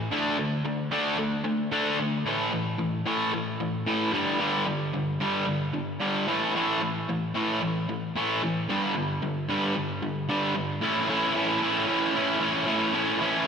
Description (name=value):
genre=rock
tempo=112 BPM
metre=4/4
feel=straight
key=A mixolydian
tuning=A4 = 440 Hz
part: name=cranked stack guitar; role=solo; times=0.0-13.5 s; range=G2 to E4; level=-24 LUFS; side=equal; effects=overdrive, tape echo
room=wet lush hall reverb, RT60 1.9 s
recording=big arena sound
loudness=-24 LUFS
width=side -6 dB against mid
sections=0.0-10.8 A section; 10.8-13.5 B section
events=none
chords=0.1 D5; 2.3 A5; 4.1 G5; 6.3 A5; 8.7 G5; 10.8 A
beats=| 0.10 0.64 1.18 1.72 | 2.25 2.79 3.33 3.86 | 4.40 4.94 5.47 6.01 | 6.54 7.08 7.62 8.15 | 8.69 9.22 9.75 10.29 | 10.82 11.35 11.88 12.41 | 12.94 13.46